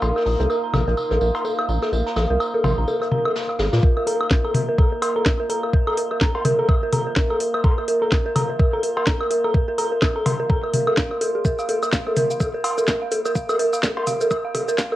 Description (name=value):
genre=minimal techno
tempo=126 BPM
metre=4/4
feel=swing 58% on 16ths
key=unclear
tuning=A4 = 439 Hz
part: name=dark detuned synth bell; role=riff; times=0.0-14.9 s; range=F4 to Bb5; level=-23 LUFS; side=right 2 dB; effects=chorus, sidechain pumping, low-pass filter, tape echo
part: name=rubbery square bass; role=bass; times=0.0-3.8 s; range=Ab1 to Bb2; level=-21 LUFS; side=equal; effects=sidechain pumping
part: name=jazz brush drum kit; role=drums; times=0.0-3.8 s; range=hi-hat, snare drum, tambourine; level=-35 LUFS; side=equal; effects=high-pass filter on hats, low-pass filter on hats, cassette tape, high-pass filter on snare, low-pass filter on snare, high-pass filter on perc, low-pass filter on perc, high-pass filter on room, low-pass filter on room
part: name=electronic cowbell, bongos, woodblock and toms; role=percussion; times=0.0-15.0 s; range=none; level=-24 LUFS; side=left 2 dB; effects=cassette tape
part: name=deep dark ambient pad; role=texture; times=0.0-15.0 s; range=Bb4 to Eb6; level=-29 LUFS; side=equal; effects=chorus, built-in reverb, sidechain pumping
part: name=swarming drone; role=texture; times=0.0-3.8 s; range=Eb4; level=-42 LUFS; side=left 1 dB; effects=none
part: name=electronic kick drum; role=drums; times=3.8-14.9 s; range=none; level=-19 LUFS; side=equal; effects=cassette tape
part: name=garage drum kit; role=drums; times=4.1-14.9 s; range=hi-hat, shaker, snare drum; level=-25 LUFS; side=equal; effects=cassette tape
room=wet studio reverb, RT60 0.5 s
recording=home recording on cassette, high-pass filter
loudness=-18 LUFS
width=side -15 dB against mid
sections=0.0-3.8 A section; 3.8-15.0 B section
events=build-up 3.8-15.0; filter sweep 3.8-15.0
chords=0.0 Bbsus4